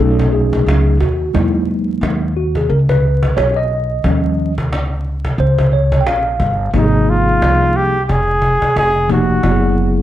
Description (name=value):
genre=hip hop, jazz-hop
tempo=89 BPM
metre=4/4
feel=swing 58% on 16ths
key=unclear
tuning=A4 = 440 Hz
part: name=mellow tine electric piano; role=accompaniment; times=0.0-10.0 s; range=C3 to G5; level=-16 LUFS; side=equal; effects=medium stereo tremolo, plate reverb
part: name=upright bass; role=bass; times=0.0-10.0 s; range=F1 to E2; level=-16 LUFS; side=equal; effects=none
part: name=cajon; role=drums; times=0.0-9.9 s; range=none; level=-22 LUFS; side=equal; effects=none
part: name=breathy flugelhorn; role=melody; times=6.8-10.0 s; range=Eb4 to Ab4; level=-16 LUFS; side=equal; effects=slapback echo, plate reverb
room=light reverb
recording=dark, warm production, vinyl crackle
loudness=-12 LUFS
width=side -12 dB against mid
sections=0.0-6.7 A section; 6.7-10.0 B section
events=tine electric piano solo 0.0-6.7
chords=0.0 B13; 1.3 Emaj9#11; 4.0 Eb9; 6.7 Ab69; 9.4 Gb7(no3)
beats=0.00 0.67 | 1.34 2.02 2.69 3.37 | 4.04 4.71 5.39 6.06 | 6.74 7.41 8.09 8.76 | 9.43